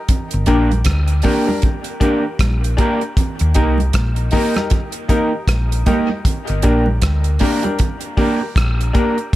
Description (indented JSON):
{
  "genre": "dub reggae",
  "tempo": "78 BPM",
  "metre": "4/4",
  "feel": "swing 60% on 16ths",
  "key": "G minor",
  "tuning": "A4 = 439 Hz",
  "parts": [
    { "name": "damped 70s drum kit", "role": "drums", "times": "0.1-9.4 s", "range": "hi-hat, kick drum, rim click", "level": "-18 LUFS", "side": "equal", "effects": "none" },
    { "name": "congas", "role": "percussion", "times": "0.1-8.8 s", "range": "none", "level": "-27 LUFS", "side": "right 4 dB", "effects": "dub echo" },
    { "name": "hollow-body short-scale fingered electric bass", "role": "bass", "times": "0.3-8.9 s", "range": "G1 to Eb2", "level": "-16 LUFS", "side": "equal", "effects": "none" },
    { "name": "mellow electric guitar", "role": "accompaniment", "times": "0.5-9.2 s", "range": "Bb3 to Bb4", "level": "-21 LUFS", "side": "right 2 dB", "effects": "lush chorus, dub echo" },
    { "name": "warm upright piano", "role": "stabs", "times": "0.5-9.1 s", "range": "D4 to Bb4", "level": "-23 LUFS", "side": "left 4 dB", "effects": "dub echo" }
  ],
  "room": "light reverb, small room ambience",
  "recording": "none",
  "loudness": "-14 LUFS",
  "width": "side -15 dB against mid",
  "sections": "0.0-9.4 A section",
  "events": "none",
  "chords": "0.1 Gm; 3.2 Eb; 6.3 Gm",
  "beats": "| 0.09 0.86 1.63 2.40 | 3.17 3.94 4.71 5.48 | 6.25 7.02 7.79 8.56 | 9.33"
}